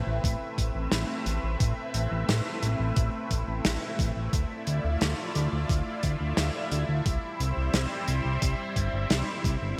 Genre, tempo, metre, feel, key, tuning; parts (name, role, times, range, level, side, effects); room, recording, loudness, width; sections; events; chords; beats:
synthwave; 88 BPM; 4/4; straight; A4 = 444 Hz
lush unison pad; sustained chords; 0.0-9.8 s; G3 to E5; -35 LUFS; equal; chorus, phaser, sidechain pumping
fat analog bass; bass; 0.0-9.7 s; G1 to D2; -31 LUFS; equal
electronic kick drum; drums; 0.2-9.6 s; -31 LUFS; equal; overdrive
warm soul drum kit; drums; 0.2-9.6 s; hi-hat, snare drum; -33 LUFS; equal; gated reverb
moderate lush hall reverb, RT60 2.6 s; bright 1980s-style digital production; -28 LUFS; mono
0.0-9.8 A section
0.0 Amadd9; 4.3 Dmadd9; 7.1 C
0.24 0.92 | 1.60 2.29 2.97 3.65 | 4.33 5.01 5.70 6.38 | 7.06 7.74 8.42 9.10 | 9.79